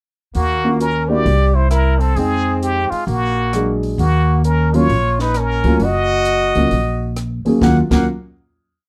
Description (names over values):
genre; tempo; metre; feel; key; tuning
jazz, small-group swing and bop; 132 BPM; 4/4; swing 65% on 8ths; Eb minor; A4 = 440 Hz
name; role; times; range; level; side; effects
mellow trumpet; second line; 0.3-8.1 s; Ab3 to G4; -27 LUFS; equal; none
compact cocktail drum kit; drums; 0.3-8.0 s; crash cymbal, hi-hat, kick drum, rim click, snare drum; -27 LUFS; equal; none
trumpet with plunger mute; melody; 0.4-8.1 s; F4 to Gb5; -22 LUFS; equal; none
upright bass; bass; 0.4-8.1 s; Gb1 to F2; -20 LUFS; equal; none
warm concert grand piano; accompaniment; 0.6-8.1 s; Eb2 to G5; -20 LUFS; equal; none
room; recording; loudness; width
light reverb; dark, warm production; -16 LUFS; mono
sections
0.4-7.6 A section; 7.6-8.9 final chord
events
none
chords
0.4 Ebm9; 1.3 C9; 2.2 Fm7; 3.1 Bb7b13; 4.0 Ebm7; 7.6 Ebm9